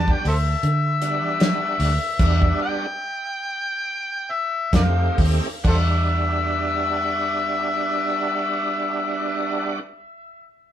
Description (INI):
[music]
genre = straight-eighth soul blues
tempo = 64-79 BPM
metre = 4/4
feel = swing 55% on 16ths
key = E minor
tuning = A4 = 444 Hz
[part]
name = overdriven harmonica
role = melody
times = 0.0-9.8 s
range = A4 to A5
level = -24 LUFS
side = left 3 dB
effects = analog delay
[part]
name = bright tonewheel organ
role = accompaniment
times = 0.0-9.8 s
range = G3 to G4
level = -26 LUFS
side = right 4 dB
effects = overdrive, chorus vibrato, slow rotary speaker
[part]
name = vintage muted fingered electric bass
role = bass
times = 0.0-9.8 s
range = D2 to E3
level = -21 LUFS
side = equal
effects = none
[part]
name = warm soul drum kit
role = drums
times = 0.1-5.9 s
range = crash cymbal, hi-hat, kick drum, snare drum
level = -22 LUFS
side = equal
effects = none
[sound]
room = light reverb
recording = band playing live in one room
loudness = -19 LUFS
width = side -10 dB against mid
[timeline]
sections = 0.0-5.6 A section; 5.6-9.4 B section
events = slowing down 0.0-5.6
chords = 0.0 Em7; 4.7 F7; 5.6 Em7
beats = 0.63 1.40 | 2.20 3.01 3.85 4.73 | 5.65 6.58 7.52 8.46